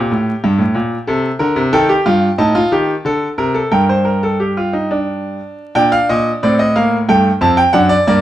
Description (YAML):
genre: classical, baroque-style 3-part fugue for grand piano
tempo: 91 BPM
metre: 3/4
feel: straight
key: G minor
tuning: A4 = 441 Hz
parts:
  - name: bright grand piano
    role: solo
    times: 0.0-8.2 s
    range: F2 to A5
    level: -12 LUFS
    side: equal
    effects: none
room: moderate stone room reverb, RT60 1.0 s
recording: vinyl crackle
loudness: -12 LUFS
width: side -13 dB against mid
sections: 0.0-5.8 A section; 5.8-8.2 B section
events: none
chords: 0.0 Gmadd9; 1.1 D5/C; 1.8 Eb; 2.4 F9/A; 3.1 D5; 3.7 Gm; 5.8 Gm/Bb (rootless); 7.1 Fadd9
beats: 0.45 1.10 | 1.75 2.41 3.07 | 3.74 4.42 5.09 | 5.76 6.42 7.08 | 7.74